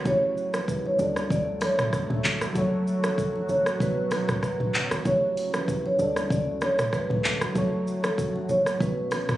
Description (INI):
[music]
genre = afrobeats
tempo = 96 BPM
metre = 4/4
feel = swing 55% on 16ths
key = unclear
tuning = A4 = 440 Hz
[part]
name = mellow FM electric piano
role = accompaniment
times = 0.0-9.4 s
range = B2 to C#5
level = -31 LUFS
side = right 1 dB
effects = chorus
[part]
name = deep dark ambient pad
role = sustained chords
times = 0.0-9.4 s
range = C#3 to F#4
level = -33 LUFS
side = right 1 dB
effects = chorus, built-in reverb
[part]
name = marimba with medium mallets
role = melody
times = 0.1-9.3 s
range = A4 to D5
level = -27 LUFS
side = equal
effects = none
[part]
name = short 808-style bass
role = bass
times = 0.1-9.4 s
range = E1 to E2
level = -34 LUFS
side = equal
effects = none
[part]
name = afro-pop drum kit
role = drums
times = 0.1-9.4 s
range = handclaps, hi-hat, kick drum, rim click, shaker, toms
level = -28 LUFS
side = equal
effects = vintage 12-bit sampler grit
[part]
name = congas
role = percussion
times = 0.5-9.3 s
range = none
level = -36 LUFS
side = right 1 dB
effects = none
[sound]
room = digital ambience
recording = recorded on a phone in the room, studio reverb, compression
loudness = -23 LUFS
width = side -14 dB against mid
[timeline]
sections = 0.0-9.4 A section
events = none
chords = 0.1 A7; 1.0 D; 2.6 F#m; 3.8 Bsus2; 5.1 A7; 6.0 D; 7.6 F#m; 8.8 Bsus2